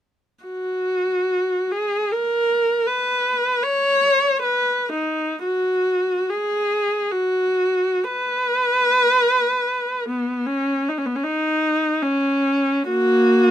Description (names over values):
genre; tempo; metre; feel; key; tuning
classical, free, expressive piece for unaccompanied viola; 51-82 BPM; 3/4; rubato; B major; A4 = 440 Hz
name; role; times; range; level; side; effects
rich viola; solo; 0.4-13.5 s; A#3 to C#5; -18 LUFS; equal; none
room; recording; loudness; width
light reverb; close, detailed microphones; -18 LUFS; side -11 dB against mid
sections
0.5-5.4 A section; 5.4-13.5 B section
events
none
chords
none